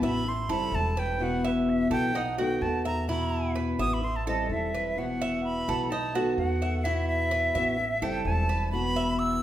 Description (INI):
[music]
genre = latin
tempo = 128 BPM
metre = 4/4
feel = straight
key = E harmonic minor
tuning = A4 = 439 Hz
[part]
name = bright silver concert flute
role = melody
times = 0.0-9.4 s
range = B4 to E6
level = -30 LUFS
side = equal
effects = none
[part]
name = fingerpicked steel-string acoustic guitar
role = accompaniment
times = 0.0-9.4 s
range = B2 to F#4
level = -30 LUFS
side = left 2 dB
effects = none
[part]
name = Cuban tres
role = arpeggios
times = 0.0-9.4 s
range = D#4 to E5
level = -32 LUFS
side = right 4 dB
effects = none
[part]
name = upright bass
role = bass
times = 0.0-9.4 s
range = E1 to E2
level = -32 LUFS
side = equal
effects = none
[sound]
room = wet large studio reverb, RT60 1.4 s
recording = band playing live in one room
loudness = -25 LUFS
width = side -12 dB against mid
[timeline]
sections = 0.0-5.0 A section; 5.0-9.4 B section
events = flute solo 0.0-5.0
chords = 0.3 Am7; 1.2 Esus2; 2.1 B7; 3.1 Esus2; 4.0 Am7; 5.0 Esus2; 5.9 B7; 6.8 Esus2; 7.8 Am7; 8.7 Esus2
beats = 0.26 0.73 | 1.20 1.67 2.14 2.61 | 3.08 3.56 4.03 4.50 | 4.97 5.44 5.91 6.38 | 6.85 7.32 7.79 8.26 | 8.73 9.20